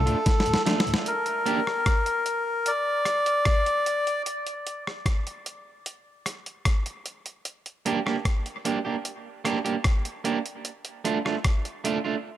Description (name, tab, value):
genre	dub reggae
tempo	75 BPM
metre	4/4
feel	straight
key	G minor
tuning	A4 = 440 Hz
part	melodica	melody	0.0-4.2 s	A4 to D5	-25 LUFS	left 1 dB	dub echo
part	electric guitar at the edge of break-up	accompaniment	0.1-1.6, 7.9-12.2 s	A3 to G4	-28 LUFS	right 5 dB	dub echo
part	mellow tonewheel organ	accompaniment	0.1-1.0 s	D2 to D4	-30 LUFS	left 2 dB	chorus vibrato, slow rotary speaker
part	dusty soul sampler-style drum kit	drums	0.1-12.0 s	hi-hat, kick drum, rim click, snare drum	-26 LUFS	equal	none
room	moderate spring reverb, RT60 2.1 s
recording	none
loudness	-24 LUFS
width	side -12 dB against mid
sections	0.0-1.1 A section; 1.1-12.4 B section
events	drum fill 0.3-1.1; break 1.1-12.4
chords	0.0 Dm; 1.1 Gm; 4.3 N.C.; 7.5 Gm; 10.6 Dm